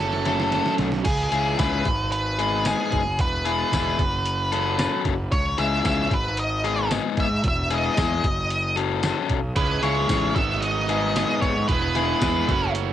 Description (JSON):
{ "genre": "indie rock", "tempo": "113 BPM", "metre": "4/4", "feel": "straight", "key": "unclear", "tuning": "A4 = 443 Hz", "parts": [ { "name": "octave-fuzz lead guitar", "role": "melody", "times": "0.0-12.7 s", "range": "G#4 to E5", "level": "-25 LUFS", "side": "right 1 dB", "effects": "distortion, cassette tape, tape echo" }, { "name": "overdriven electric guitar", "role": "riff", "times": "0.0-1.1, 9.6-12.9 s", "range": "F#2 to F#4", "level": "-28 LUFS", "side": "right 11 dB", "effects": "wide subtle chorus, cassette tape" }, { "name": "fuzz picked electric bass", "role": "bass", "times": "0.0-12.9 s", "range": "E1 to G#2", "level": "-27 LUFS", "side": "equal", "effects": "overdrive" }, { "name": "trip hop sampler-style drum kit", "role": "drums", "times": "0.1-12.9 s", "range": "crash cymbal, hi-hat, kick drum, snare drum, tambourine", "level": "-27 LUFS", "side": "equal", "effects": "none" }, { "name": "overdriven electric guitar", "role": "riff", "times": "0.3-12.5 s", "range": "F#3 to A4", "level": "-25 LUFS", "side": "left 10 dB", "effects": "cassette tape" } ], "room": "little or no reverb", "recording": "home recording on cassette", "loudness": "-20 LUFS", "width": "side -11 dB against mid", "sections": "0.0-1.1 A section; 1.1-12.9 A section", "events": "drum fill 0.0-1.1", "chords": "0.0 F#m; 1.1 C#m; 1.9 G#m7; 3.2 E; 4.0 F#m; 5.3 C#m; 6.1 G#m; 7.4 Emaj7; 8.2 F#m; 9.6 C#m; 10.4 G#m; 11.7 E" }